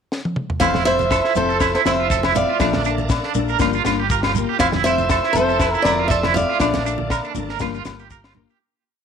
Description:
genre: highlife guitar band.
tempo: 120 BPM.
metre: 4/4.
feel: swing 53% on 16ths.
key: F major.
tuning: A4 = 441 Hz.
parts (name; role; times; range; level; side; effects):
tight funk drum kit; drums; 0.1-8.4 s; kick drum, snare drum, toms; -24 LUFS; left 1 dB; none.
picked swing-style acoustic guitar; melody; 0.6-7.3 s; A4 to F5; -20 LUFS; right 1 dB; tape echo.
nylon-string guitar; accompaniment; 0.6-8.5 s; E3 to D4; -26 LUFS; left 13 dB; none.
bright tonewheel organ; sustained chords; 0.6-8.6 s; Bb3 to Bb4; -31 LUFS; equal; slow rotary speaker, chorus vibrato.
electric guitar at the edge of break-up; arpeggios; 0.6-8.6 s; D4 to Bb4; -23 LUFS; right 13 dB; tremolo, tape echo.
fingered electric bass; bass; 0.6-8.4 s; F1 to Bb1; -26 LUFS; equal; none.
agogo bells; percussion; 0.6-8.4 s; none; -28 LUFS; left 15 dB; none.
shekere; percussion; 0.6-8.6 s; none; -30 LUFS; left 8 dB; none.
congas; percussion; 0.7-8.5 s; none; -28 LUFS; right 8 dB; none.
room: light reverb.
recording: 1960s-style stereo with parts hard left and right.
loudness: -16 LUFS.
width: side -7 dB against mid.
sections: 0.0-0.6 pickup bar; 0.6-8.6 groove.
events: drum fill 0.1-0.6; fade-out 6.6-8.6.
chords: 0.0 N.C.; 0.6 Fmaj7; 2.6 Bbmaj7; 3.6 Gm7; 4.6 Fmaj7; 6.6 Bbmaj7; 7.6 Gm7.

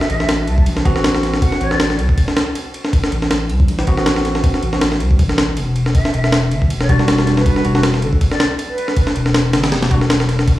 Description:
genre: drum and bass, jungle.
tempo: 159 BPM.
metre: 4/4.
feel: swing 55% on 16ths.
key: A dorian.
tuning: A4 = 441 Hz.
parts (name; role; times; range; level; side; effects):
mellow concert flute; melody; 0.0-2.0, 5.9-9.1 s; A4 to A5; -25 LUFS; equal; dub echo.
jungle sampler-style drum kit; drums; 0.0-10.6 s; kick drum, ride cymbal, snare drum; -15 LUFS; equal; none.
saturated sub bass; bass; 0.1-10.5 s; E1 to C2; -18 LUFS; equal; none.
bell-like tine electric piano; stabs; 0.9-10.0 s; G3 to F#4; -23 LUFS; right 1 dB; medium stereo tremolo, dub echo.
noise sweep; sound effects; 10.6 s; none; -36 LUFS; left 1 dB; none.
room: light reverb, small room ambience.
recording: played on a big sound system in a bare room, large studio reverb.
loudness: -13 LUFS.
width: side -15 dB against mid.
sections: 0.0-10.6 A section.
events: none.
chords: 0.0 Am69; 6.0 Em7.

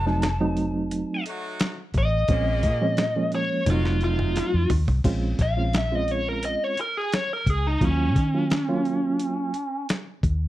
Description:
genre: straight-eighth soul blues.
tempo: 87 BPM.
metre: 4/4.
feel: straight.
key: Bb minor.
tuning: A4 = 436 Hz.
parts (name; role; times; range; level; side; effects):
biting lead guitar; melody; 0.0-9.9 s; Db4 to A5; -26 LUFS; equal; overdrive, slapback echo.
bright horn section; sustained chords; 0.0-4.6 s; Eb3 to Ab4; -36 LUFS; left 2 dB; none.
vintage muted fingered electric bass; bass; 0.0-10.5 s; F1 to Eb3; -25 LUFS; equal; none.
bright reed electric piano; accompaniment; 0.1-9.5 s; F3 to F4; -27 LUFS; right 3 dB; fast tremolo.
boom bap sampler-style drum kit; drums; 0.1-10.4 s; crash cymbal, hi-hat, kick drum, snare drum, toms; -26 LUFS; equal; none.
room: digital ambience.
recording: dry, close 1970s-style studio recording.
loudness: -22 LUFS.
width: side -15 dB against mid.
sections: 0.0-5.1 A section; 5.1-10.5 A section.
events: lead electric guitar solo 0.0-5.1, 5.1-10.5; drum fill 3.7-5.1.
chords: 0.0 F7b9; 2.3 Bbm7; 3.7 F7b9; 5.1 Bbm7; 7.8 Ebm7.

